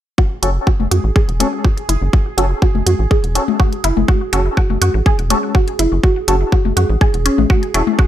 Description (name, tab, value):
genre	minimal techno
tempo	123 BPM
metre	4/4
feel	straight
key	F# minor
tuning	A4 = 442 Hz
part	resonant blip pluck	riff	0.2-8.1 s	C#4 to G#4	-20 LUFS	right 1 dB	phaser, sidechain pumping, ping-pong delay
part	electronic kick drum	drums	0.2-8.1 s	none	-13 LUFS	equal	none
part	pulsing gated texture	texture	0.6-8.1 s	G#4	-28 LUFS	right 8 dB	chorus, built-in reverb, sidechain pumping
part	percussive organ stab	stabs	0.4-7.8 s	C#4 to A4	-22 LUFS	left 1 dB	ensemble chorus, digital delay
part	rubbery square bass	bass	0.4-7.8 s	E1 to F#2	-16 LUFS	equal	sidechain pumping
part	electronic hi-hat	drums	0.4-7.8 s	none	-21 LUFS	right 1 dB	none
part	electronic toms	percussion	0.8-8.0 s	none	-21 LUFS	left 12 dB	digital delay
room	light reverb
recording	none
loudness	-13 LUFS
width	side -12 dB against mid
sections	0.2-8.1 A section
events	none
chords	0.2 F#m